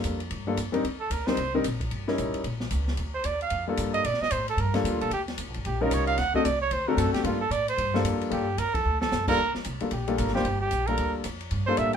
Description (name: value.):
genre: jazz, small-group swing and bop.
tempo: 225 BPM.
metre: 4/4.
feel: swing 61% on 8ths.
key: G minor.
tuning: A4 = 440 Hz.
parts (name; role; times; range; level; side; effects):
warm baby grand piano; accompaniment; 0.0-12.0 s; G3 to C5; -27 LUFS; left 3 dB; none.
upright bass; bass; 0.0-12.0 s; G1 to Bb2; -30 LUFS; equal; none.
open jazz drum kit; drums; 0.0-12.0 s; crash cymbal, hi-hat, kick drum, ride cymbal, snare drum; -35 LUFS; left 1 dB; none.
breathy trumpet; second line; 1.0-12.0 s; D4 to F#5; -27 LUFS; right 4 dB; none.
room: moderate small room reverb, RT60 0.5 s.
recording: minimal, uncompressed stereo recording.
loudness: -24 LUFS.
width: side -7 dB against mid.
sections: 0.0-9.4 A section; 9.4-12.0 A section.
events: trumpet solo 0.0-12.0; drum fill 8.8.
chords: 0.0 Gm7; 0.8 Cm7; 1.9 C#dim7; 3.0 Gm7; 5.1 Eb7; 6.2 D7; 7.2 Gm7; 8.8 D; 9.4 Gm7.